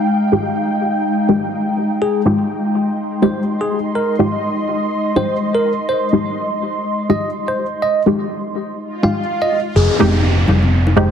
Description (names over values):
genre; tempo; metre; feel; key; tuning
deep house; 124 BPM; 4/4; swing 58% on 16ths; F minor; A4 = 440 Hz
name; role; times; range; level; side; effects
filtered dub chord stab; stabs; 0.0-11.1 s; Ab3 to G4; -18 LUFS; equal; phaser, ping-pong delay
ethereal airy pad; texture; 0.0-11.1 s; Ab3 to C6; -20 LUFS; equal; ensemble chorus, built-in reverb
bell-like tine electric piano; melody; 2.0-11.1 s; Ab4 to F5; -21 LUFS; right 1 dB; phaser, dub echo
swell and downlifter; sound effects; 8.9-11.1 s; none; -21 LUFS; equal; none
hollow-body short-scale fingered electric bass; bass; 9.8-11.1 s; F1; -14 LUFS; equal; none
congas and bongos; percussion; 10.0-10.9 s; none; -20 LUFS; left 2 dB; none
room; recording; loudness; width
wet echo chamber reverb, RT60 1.7 s, digital ambience; dense, heavily limited modern master; -15 LUFS; side -8 dB against mid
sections
0.0-9.8 A section; 9.8-11.1 B section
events
swell 8.9-9.8; drop 9.8-11.1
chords
0.0 Fm9